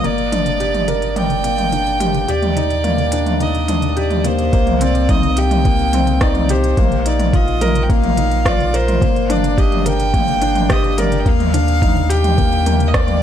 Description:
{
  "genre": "piano and strings electronica",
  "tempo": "107 BPM",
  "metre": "4/4",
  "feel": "straight",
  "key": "C minor",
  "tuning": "A4 = 442 Hz",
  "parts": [
    { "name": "rich violin", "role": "melody", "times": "0.0-13.2 s", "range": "C5 to G5", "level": "-21 LUFS", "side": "right 2 dB", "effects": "none" },
    { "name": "felt-muted upright piano", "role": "riff", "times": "0.0-13.2 s", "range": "Bb3 to D5", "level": "-20 LUFS", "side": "left 3 dB", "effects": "none" },
    { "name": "warm sub bass", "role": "bass", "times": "0.0-13.2 s", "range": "G1 to Eb2", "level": "-20 LUFS", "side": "equal", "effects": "sidechain pumping" },
    { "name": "organic electronic drum kit", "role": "drums", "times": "0.0-13.2 s", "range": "hi-hat, rim click, toms", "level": "-21 LUFS", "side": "equal", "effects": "overdrive" },
    { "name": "electronic kick drum", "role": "drums", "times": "4.5-13.1 s", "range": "none", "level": "-17 LUFS", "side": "equal", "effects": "none" }
  ],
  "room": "light reverb, digital ambience",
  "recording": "dark, warm production",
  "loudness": "-13 LUFS",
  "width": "side -9 dB against mid",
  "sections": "0.0-4.5 A section; 4.5-13.2 B section",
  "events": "build-up 0.0-4.5; drop 4.5-13.2",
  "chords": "0.0 Gm; 2.3 Ebmaj7; 4.5 Cm7; 6.8 Bbsus4; 9.0 Gm; 11.3 Ebmaj7"
}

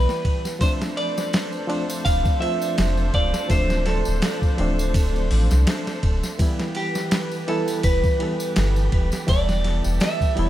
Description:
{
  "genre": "trip hop",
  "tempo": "83 BPM",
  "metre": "4/4",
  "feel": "swing 55% on 16ths",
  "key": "unclear",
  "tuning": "A4 = 440 Hz",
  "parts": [
    { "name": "clean electric guitar", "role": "melody", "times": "0.0-10.5 s", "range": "G4 to F5", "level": "-26 LUFS", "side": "right 2 dB", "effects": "dub echo" },
    { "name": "barky reed electric piano", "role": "accompaniment", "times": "0.0-10.5 s", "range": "E3 to A4", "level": "-28 LUFS", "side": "equal", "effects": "overdrive, harmonic tremolo, tape echo" },
    { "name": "muted chamber string section", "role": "sustained chords", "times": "0.0-10.5 s", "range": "E3 to C5", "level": "-32 LUFS", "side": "left 1 dB", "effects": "none" },
    { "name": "soft dub sub bass", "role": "bass", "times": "0.0-10.5 s", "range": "D1 to C2", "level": "-21 LUFS", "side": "equal", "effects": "none" },
    { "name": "boom bap sampler-style drum kit", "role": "drums", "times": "0.1-10.5 s", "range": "hi-hat, kick drum, ride cymbal, snare drum", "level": "-24 LUFS", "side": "equal", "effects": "small room ambience" },
    { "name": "tambourine and triangle", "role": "percussion", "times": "0.1-10.3 s", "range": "none", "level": "-38 LUFS", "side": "left 1 dB", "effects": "tape echo" }
  ],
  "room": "little or no reverb",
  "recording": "echo-heavy mix",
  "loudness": "-19 LUFS",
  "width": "side -13 dB against mid",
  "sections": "0.0-10.5 A section",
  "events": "none",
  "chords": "0.0 Em; 0.6 Dm7; 6.4 Em"
}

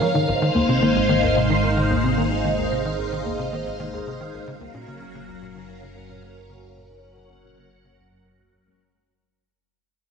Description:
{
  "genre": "ambient, sequencer-driven space music",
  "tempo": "111 BPM",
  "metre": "4/4",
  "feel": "straight",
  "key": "unclear",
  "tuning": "A4 = 440 Hz",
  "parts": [
    { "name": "phased string machine", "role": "sustained chords", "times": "0.0-8.8 s", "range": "Db3 to Gb5", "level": "-23 LUFS", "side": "equal", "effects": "ensemble chorus, phaser" },
    { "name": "tight sequencer bass", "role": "riff", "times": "0.0-8.7 s", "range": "Gb1 to F3", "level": "-26 LUFS", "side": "equal", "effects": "wide subtle chorus, tape echo" },
    { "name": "analog drone", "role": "bass", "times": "0.7-8.8 s", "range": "Gb1 to Db2", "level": "-29 LUFS", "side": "equal", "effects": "chorus" },
    { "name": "soft round pluck", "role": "arpeggios", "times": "0.1-8.8 s", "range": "Ab3 to Bb4", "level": "-27 LUFS", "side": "left 2 dB", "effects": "chorus, auto-pan, tape echo" }
  ],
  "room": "wet plate reverb, RT60 2.5 s",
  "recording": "none",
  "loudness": "-19 LUFS",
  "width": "side -6 dB against mid",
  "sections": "0.0-8.8 A section",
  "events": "fade-out on analog synth bass 0.0-8.8; fade-out on synth arpeggio sound 0.0-8.8; fade-out 0.0-8.8",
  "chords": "0.1 Ab6; 4.5 Gbmaj7"
}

